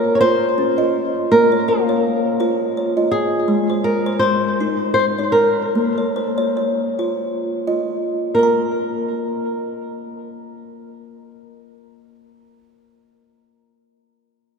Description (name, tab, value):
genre	world meditative, meditative tuned percussion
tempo	62-82 BPM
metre	3/4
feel	swing 55% on 16ths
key	Bb minor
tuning	A4 = 440 Hz
part	flamenco guitar	melody	0.0-12.6 s	F4 to Db5	-18 LUFS	equal	ping-pong delay
part	kalimba	arpeggios	0.0-12.8 s	Ab3 to Bb5	-20 LUFS	equal	none
room	wet cathedral reverb, RT60 5.2 s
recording	in a vast, echoing space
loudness	-16 LUFS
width	side -5 dB against mid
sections	0.0-8.4 A section; 8.4-14.2 B section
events	slowing down 3.5-8.4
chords	0.0 Bbm (rootless); 3.5 Ab; 5.7 Bbm; 8.4 N.C.